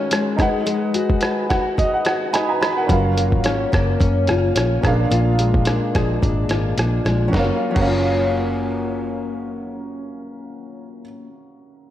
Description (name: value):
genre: indie pop, bedroom pop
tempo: 108 BPM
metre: 4/4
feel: swing 55% on 16ths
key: F# major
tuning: A4 = 442 Hz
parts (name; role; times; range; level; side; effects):
- fingerpicked steel-string acoustic guitar; accompaniment; 0.0-11.4 s; A#2 to B4; -22 LUFS; left 2 dB; analog chorus, vibrato effect, slapback echo
- warm upright piano; accompaniment; 0.0-11.9 s; C#4 to B5; -24 LUFS; right 2 dB; slapback echo
- lo-fi sampler-style drum kit; drums; 0.1-7.9 s; crash cymbal, hi-hat, kick drum, rim click, snare drum; -22 LUFS; equal; overdrive
- vintage muted fingered electric bass; bass; 2.9-11.0 s; F#1 to F#2; -21 LUFS; equal; none
room: moderate lush hall reverb, RT60 2.0 s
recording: big arena sound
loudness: -17 LUFS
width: side -12 dB against mid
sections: 0.0-2.9 A section; 2.9-7.3 B section; 7.3-9.6 C section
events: upright piano fill 1.2-2.9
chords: 0.4 G#m7; 2.9 F#maj7; 4.8 A#7; 7.3 F#maj7